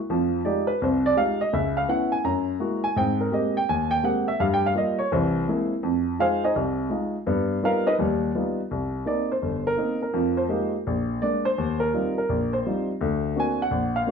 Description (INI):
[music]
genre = solo jazz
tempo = 167 BPM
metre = 4/4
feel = swing 66% on 8ths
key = C minor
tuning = A4 = 440 Hz
[part]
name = dark baby grand piano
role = solo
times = 0.1-14.1 s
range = G1 to A#5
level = -22 LUFS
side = equal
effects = none
[sound]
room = moderate large studio reverb, RT60 0.9 s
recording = none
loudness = -22 LUFS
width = side -6 dB against mid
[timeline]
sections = 0.0-8.7 A section; 8.7-14.1 A section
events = grand piano solo 0.0-8.7, 8.7-14.1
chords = 0.1 Fm9; 1.5 Dbm7; 2.2 F#9; 3.0 Abmaj9; 4.4 Gm7b5; 5.1 Caug7; 5.8 Fm7; 7.3 G7alt; 8.7 Cm7; 10.1 Fm11; 10.9 Bb7; 11.6 Eb69; 13.0 D7alt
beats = | 0.08 0.43 0.80 1.15 | 1.51 1.87 2.23 2.59 | 2.95 3.31 3.67 4.03 | 4.39 4.75 5.11 5.47 | 5.83 6.18 6.54 6.90 | 7.26 7.62 7.98 8.34 | 8.70 9.06 9.42 9.78 | 10.14 10.50 10.86 11.21 | 11.57 11.93 12.29 12.65 | 13.01 13.37 13.73 14.09